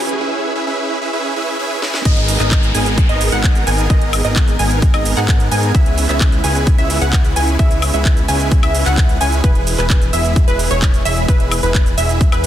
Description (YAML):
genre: EDM, festival progressive house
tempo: 130 BPM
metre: 4/4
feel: straight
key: G# minor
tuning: A4 = 438 Hz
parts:
  - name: supersaw pad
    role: sustained chords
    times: 0.0-12.5 s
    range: B2 to B4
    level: -26 LUFS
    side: equal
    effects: phaser, sidechain pumping
  - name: wide unison pluck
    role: arpeggios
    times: 0.0-12.5 s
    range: B4 to G#5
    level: -22 LUFS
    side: right 1 dB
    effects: sidechain pumping, tape echo
  - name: supersaw chords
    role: riff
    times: 0.0-12.5 s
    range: B3 to G#5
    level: -21 LUFS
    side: right 2 dB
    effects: sidechain pumping, tape echo
  - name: riser and downlifter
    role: sound effects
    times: 0.0-5.7 s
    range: none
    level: -26 LUFS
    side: equal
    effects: none
  - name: house drum kit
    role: drums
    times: 0.1-12.5 s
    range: crash cymbal, handclaps, hi-hat, shaker, snare drum, woodblock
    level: -22 LUFS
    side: right 1 dB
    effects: none
  - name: fat analog bass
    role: bass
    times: 2.1-12.5 s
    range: E1 to G#2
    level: -18 LUFS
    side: equal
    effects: sidechain pumping
  - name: electronic kick drum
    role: drums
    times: 2.1-12.3 s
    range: none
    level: -13 LUFS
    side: equal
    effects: none
room: little or no reverb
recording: dense, heavily limited modern master, high-pass filter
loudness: -12 LUFS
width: side -11 dB against mid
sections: 0.0-2.1 A section; 2.1-12.5 B section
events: build-up 0.0-2.1; drum fill 0.0, 1.8; riser 0.0; filter sweep 0.0-2.1; drop 2.1-12.5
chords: 0.0 C#m7; 2.1 G#madd9; 5.7 C#m7; 9.4 E